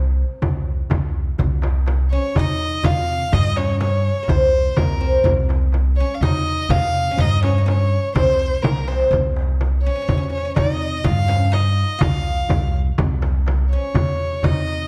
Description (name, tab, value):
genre	Arabic maqam ensemble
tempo	124 BPM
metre	4/4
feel	straight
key	C maqam kurd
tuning	A4 = 440 Hz
part	oud	melody	0.0-14.9 s	Bb3 to F4	-27 LUFS	equal	none
part	upright bass	bass	0.0-14.8 s	C2 to C3	-22 LUFS	equal	none
part	darbuka	percussion	0.2-14.7 s	none	-27 LUFS	equal	none
part	frame drum	percussion	0.4-14.6 s	none	-25 LUFS	equal	none
part	rich violin	second line	2.1-14.9 s	Bb4 to F5	-26 LUFS	equal	none
room	moderate recital hall reverb, RT60 1.5 s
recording	dark, warm production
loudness	-19 LUFS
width	mono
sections	0.0-1.4 A section; 1.4-14.9 B section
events	drum fill 8.6-9.1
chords	none